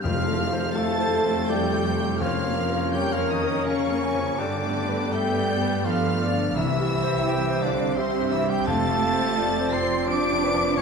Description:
cinematic, emotional film score for orchestra; 84 BPM; 3/4; rubato; A4 = 440 Hz
rich symphonic violin section; melody; 0.0-10.8 s; C6 to D7; -32 LUFS; left 2 dB
mellow cor anglais; second line; 0.0-10.8 s; C4 to D5; -32 LUFS; right 4 dB
mellow hollow silver concert flute; second line; 0.0-10.8 s; C5 to D6; -32 LUFS; equal
warm symphonic violin section; second line; 0.0-10.8 s; C5 to D6; -34 LUFS; left 1 dB
bright concert grand piano; accompaniment; 0.0-10.8 s; C2 to D5; -30 LUFS; left 3 dB
dark French horn section; sustained chords; 0.0-10.8 s; B3 to Bb4; -30 LUFS; left 4 dB
rich symphonic double bass section; bass; 0.0-10.8 s; F1 to G2; -32 LUFS; right 5 dB
timpani; percussion; 0.0-3.3, 6.6-9.7 s; F2 to C3; -32 LUFS; left 2 dB
clear symphonic viola section; accompaniment; 0.1-10.8 s; A3 to Bb4; -32 LUFS; left 1 dB
rich symphonic cello section; bass; 0.1-10.8 s; C3 to D4; -30 LUFS; right 4 dB
tam-tam; percussion; 0.1-2.9 s; -37 LUFS; equal
dark clarinet; second line; 0.8-10.8 s; B4 to Ab5; -33 LUFS; left 1 dB
wet scoring stage reverb, RT60 1.9 s; minimal, uncompressed stereo recording; -21 LUFS; side -5 dB against mid
0.1-10.8 A section
band accent 0.1-0.8
0.1 F; 2.2 Bbm/F; 4.4 Gadd9; 6.6 C; 8.7 F
| 0.05 0.77 1.50 | 2.22 2.94 3.67 | 4.39 5.13 5.85 | 6.56 7.27 7.97 | 8.67 9.37 10.08 | 10.78

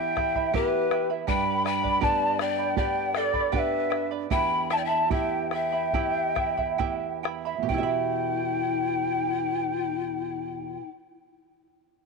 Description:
andean folk, Andean ensemble; 65-81 BPM; 4/4; straight; E minor pentatonic; A4 = 438 Hz
mellow quena; melody; 0.0-10.9 s; B4 to B5; -27 LUFS; left 1 dB
breathy mellow pan flute; second line; 0.0-10.9 s; E4 to G5; -31 LUFS; left 14 dB
charango; accompaniment; 0.0-11.3 s; E4 to B5; -31 LUFS; right 11 dB
flamenco guitar; accompaniment; 0.0-11.0 s; E2 to E5; -33 LUFS; right 11 dB
bombo; percussion; 0.2-8.1 s; -31 LUFS; equal
light reverb, small room ambience; 1960s-style stereo with parts hard left and right; -24 LUFS; side -3 dB against mid
0.0-7.7 A section; 7.7-11.4 B section
slowing down 1.3-7.7
0.0 Em; 1.3 G; 4.3 Em
0.54 | 1.28 2.02 2.77 3.53 | 4.31 5.11 5.94 6.79 | 7.69 8.61 9.52 10.44

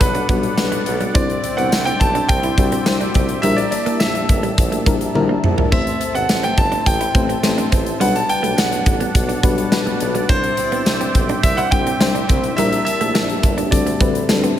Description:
1980s-style pop; 105 BPM; 4/4; straight; A4 = 439 Hz
bright concert grand piano; melody; 0.0-14.2 s; B4 to A5; -22 LUFS; right 1 dB; tape echo, shimmer reverb
FM electric piano with tremolo; accompaniment; 0.0-14.6 s; G3 to C5; -22 LUFS; left 5 dB; shimmer reverb
sweeping resonant pad; sustained chords; 0.0-14.6 s; D3 to A5; -26 LUFS; right 1 dB; chorus, shimmer reverb
direct-recorded clean electric guitar; riff; 0.0-14.6 s; G3 to E4; -28 LUFS; right 6 dB; lush chorus, shimmer reverb
clear tuba; bass; 0.0-14.5 s; G1 to D2; -24 LUFS; equal
big rock drum kit; drums; 0.0-14.6 s; hi-hat, kick drum, snare drum, splash cymbal, tambourine, toms; -18 LUFS; equal; gated reverb
light reverb, small room ambience; -15 LUFS; side -11 dB against mid
0.0-14.6 A section
drum fill 5.2-5.7
0.0 Gmaj7; 1.2 Cadd9; 3.4 Gm6; 5.7 Am; 8.0 Gmaj7; 10.3 Cadd9; 12.6 Gm6/Bb; 13.7 D7sus4
0.01 0.58 | 1.15 1.72 2.29 2.87 | 3.44 4.01 4.58 5.15 | 5.72 6.29 6.87 7.44 | 8.01 8.58 9.15 9.72 | 10.29 10.87 11.44 12.01 | 12.58 13.15 13.72 14.29

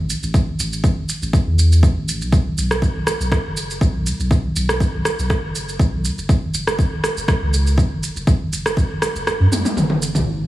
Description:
afro house; 121 BPM; 4/4; swing 54% on 16ths; A4 = 440 Hz
warm sub bass; bass; 0.0-10.5 s; F#1 to F#2; -20 LUFS; equal; sidechain pumping
deep house drum kit; drums; 0.1-10.4 s; rim click, shaker, toms; -22 LUFS; right 1 dB; low-pass filter on perc, low-pass filter on snare, low-pass filter on toms, low-pass filter on room
electronic kick drum; drums; 0.3-8.9 s; -18 LUFS; equal; overdrive
light reverb; heavily compressed radio sound, multiband compression, small room ambience; -16 LUFS; side -15 dB against mid
0.0-10.3 A section
kick drops out 9.3-10.3; drum fill 9.5-10.3
| 0.34 0.84 1.33 1.83 | 2.33 2.82 3.32 3.81 | 4.31 4.80 5.30 5.80 | 6.29 6.79 7.28 7.78 | 8.28 8.77 9.27 9.76 | 10.26

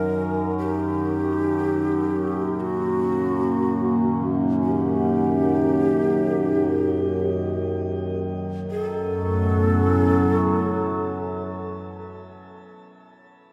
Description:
dark ambient drone; free time; A4 = 440 Hz
breathy mellow shakuhachi; melody; 0.0-11.7 s; F#4 to A#4; -28 LUFS; equal; shimmer reverb, analog delay
overtone-sweeping drone; drone; 0.0-11.7 s; F#2 to F#3; -28 LUFS; equal; chorus, built-in reverb
dark analog pad; sustained chords; 1.9-12.3 s; F#2 to E4; -26 LUFS; equal; chorus, shimmer reverb
wet plate reverb, RT60 2.7 s; dreamy mix soaked in reverb; -23 LUFS; mono
0.0-8.7 A section; 8.7-12.8 B section
fade-in on shakuhachi 0.0-8.7; filter sweep on synth drone 0.0-8.7
0.0 D#; 8.7 F#m7
free time

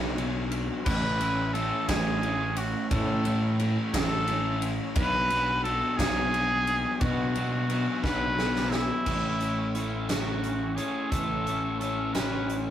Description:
indie rock; 58 BPM (dotted quarters); 6/8; straight; A major; A4 = 440 Hz
clear trumpet; melody; 0.0-12.6 s; E4 to B4; -30 LUFS; equal
crunchy overdriven guitar; riff; 0.0-12.7 s; A2 to C#5; -30 LUFS; left 2 dB
growling FM bass; bass; 0.0-12.7 s; A1 to B2; -31 LUFS; right 1 dB
big rock drum kit; drums; 0.2-12.7 s; crash cymbal, hi-hat, kick drum, ride cymbal, snare drum; -32 LUFS; right 1 dB
moderate small room reverb, RT60 0.5 s; rough rehearsal-room recording; -25 LUFS; side -10 dB against mid
0.0-9.1 A section; 9.1-12.7 B section
drum fill 8.0-9.1
0.0 Bm; 0.9 A; 5.0 Bm; 9.1 A
| 0.86 1.88 | 2.91 3.93 | 4.95 5.98 | 7.00 8.03 | 9.06 10.09 | 11.12 12.15

